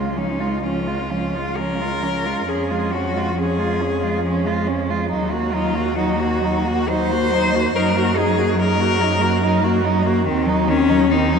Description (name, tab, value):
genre	classical, lyrical piece for cello ensemble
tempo	69 BPM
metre	3/4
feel	uneven beats, rubato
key	Db major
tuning	A4 = 439 Hz
part	rich cello	second line	0.0-11.4 s	C4 to Gb4	-22 LUFS	right 4 dB	none
part	rich cello	accompaniment	0.0-11.4 s	Eb3 to Bb3	-23 LUFS	left 2 dB	none
part	rich cello	bass	0.0-11.4 s	Db2 to Gb2	-25 LUFS	right 1 dB	none
part	clear cello	melody	0.2-11.4 s	Db4 to C5	-23 LUFS	left 6 dB	none
room	wet cathedral reverb, RT60 5.5 s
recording	in a vast, echoing space, nothing above 10.4 kHz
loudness	-17 LUFS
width	side -6 dB against mid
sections	0.0-11.4 A section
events	none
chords	0.0 Db; 2.5 Db/F; 5.1 Ebm; 7.8 Ebm/Gb; 10.3 Cdim/Eb